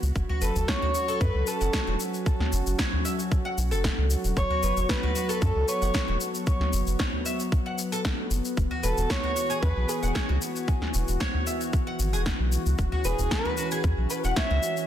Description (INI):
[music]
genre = organic downtempo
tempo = 114 BPM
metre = 4/4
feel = straight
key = F# minor pentatonic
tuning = A4 = 440 Hz
[part]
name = warm analog pad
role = sustained chords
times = 0.0-14.9 s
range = E3 to F#4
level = -33 LUFS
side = equal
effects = chorus, sidechain pumping
[part]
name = round analog bass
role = bass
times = 0.0-14.6 s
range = E1 to F#2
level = -26 LUFS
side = equal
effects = sidechain pumping
[part]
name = electronic shaker and snare drum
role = drums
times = 0.0-14.9 s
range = none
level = -32 LUFS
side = left 1 dB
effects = overdrive
[part]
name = electronic kick drum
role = drums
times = 0.2-14.5 s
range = none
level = -27 LUFS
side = equal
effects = none
[part]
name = oud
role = arpeggios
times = 0.3-14.6 s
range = F#4 to F#5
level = -34 LUFS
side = left 1 dB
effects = ping-pong delay
[part]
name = udu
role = percussion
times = 0.3-13.5 s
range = none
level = -31 LUFS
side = equal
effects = none
[part]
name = dark kamancheh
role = melody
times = 0.4-14.9 s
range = G#4 to F#5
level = -31 LUFS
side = right 1 dB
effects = digital delay
[sound]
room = light reverb, digital ambience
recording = dense, heavily limited modern master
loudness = -24 LUFS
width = side -10 dB against mid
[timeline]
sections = 0.0-14.9 A section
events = none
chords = 0.2 F#5; 8.6 E